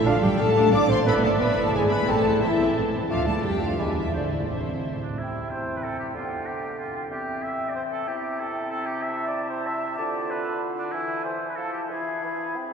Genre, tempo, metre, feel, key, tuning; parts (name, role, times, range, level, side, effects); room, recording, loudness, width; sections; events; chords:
classical; 170-190 BPM; 3/4; straight; A minor, C major from 5.2 s, A minor from 9.0 s; A4 = 440 Hz
warm symphonic violin section; melody; 0.0-5.0 s; C5 to D6; -34 LUFS; left 3 dB
clear clarinet; second line; 0.0-12.7 s; B3 to D5; -34 LUFS; left 1 dB
hollow small flute group; second line; 0.0-12.7 s; C5 to D6; -33 LUFS; equal
rich symphonic violin section; second line; 0.0-5.0 s; B4 to A5; -33 LUFS; left 1 dB
warm symphonic viola section; accompaniment; 0.0-5.0 s; G#3 to A4; -33 LUFS; right 2 dB
warm French horn section; sustained chords; 0.0-5.0 s; C4 to D5; -26 LUFS; left 2 dB
warm oboe; second line; 0.1-12.6 s; D4 to F5; -32 LUFS; right 1 dB
mellow bassoon; accompaniment; 0.1-12.7 s; C3 to D4; -33 LUFS; equal
dark symphonic cello section; bass; 0.1-5.0 s; C3 to D4; -28 LUFS; right 3 dB
warm symphonic double bass section; bass; 0.1-5.0 s; G#1 to F2; -29 LUFS; right 2 dB
wet cathedral reverb, RT60 5.4 s; heard from further back in the room; -23 LUFS; side -6 dB against mid
0.0-5.2 A section; 5.2-12.7 B section
0.1 Dm/A; 1.1 E7/G#; 2.1 Am; 3.1 Dm; 3.8 E7; 4.1 Am; 5.2 C; 6.1 G7/D; 7.1 C/E; 8.1 C; 10.0 Bm7b5/D; 10.9 E; 11.6 Fmaj7; 11.9 E